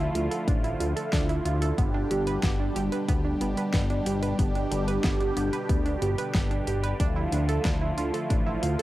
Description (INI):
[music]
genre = synthwave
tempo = 92 BPM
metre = 4/4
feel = straight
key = unclear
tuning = A4 = 440 Hz
[part]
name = phased analog pad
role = sustained chords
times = 0.0-8.8 s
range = B2 to G4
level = -30 LUFS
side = equal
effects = phaser, chorus
[part]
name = analog pluck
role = arpeggios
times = 0.0-8.8 s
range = B3 to B4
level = -32 LUFS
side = right 5 dB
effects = chorus, analog delay
[part]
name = fat analog bass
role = bass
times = 0.0-8.8 s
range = G1 to D2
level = -29 LUFS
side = left 1 dB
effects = sidechain pumping
[part]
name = pop drum kit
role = drums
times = 0.2-8.8 s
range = hi-hat, snare drum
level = -34 LUFS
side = left 1 dB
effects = cassette tape
[part]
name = electronic kick drum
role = drums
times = 0.5-8.4 s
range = none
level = -27 LUFS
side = left 1 dB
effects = cassette tape
[sound]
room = light reverb, digital ambience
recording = home recording on cassette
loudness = -24 LUFS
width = side -16 dB against mid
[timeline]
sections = 0.0-8.8 A section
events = none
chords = 0.0 Dmadd9; 1.8 G; 7.0 Dmadd9